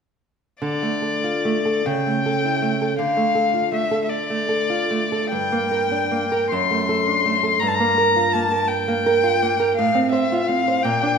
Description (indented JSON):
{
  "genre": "romantic duo for violin and classical guitar",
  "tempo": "47-57 BPM (dotted quarters)",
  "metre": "6/8",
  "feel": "rubato",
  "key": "D minor",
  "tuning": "A4 = 439 Hz",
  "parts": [
    { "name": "rich violin", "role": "melody", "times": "0.6-11.2 s", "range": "D5 to C6", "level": "-21 LUFS", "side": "left 4 dB", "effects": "none" },
    { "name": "nylon-string guitar", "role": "accompaniment", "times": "0.6-11.2 s", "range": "F#2 to C5", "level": "-21 LUFS", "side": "right 3 dB", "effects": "none" }
  ],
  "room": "wet recital hall reverb, RT60 1.6 s",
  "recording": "recorded in a church or concert hall",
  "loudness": "-18 LUFS",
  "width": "side -6 dB against mid",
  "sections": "0.6-11.2 A section",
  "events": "none",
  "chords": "0.6 Dm; 1.9 A7/C#; 3.0 Dm; 5.3 Gm; 6.5 D7/F#; 7.6 Gm7; 9.8 F/A"
}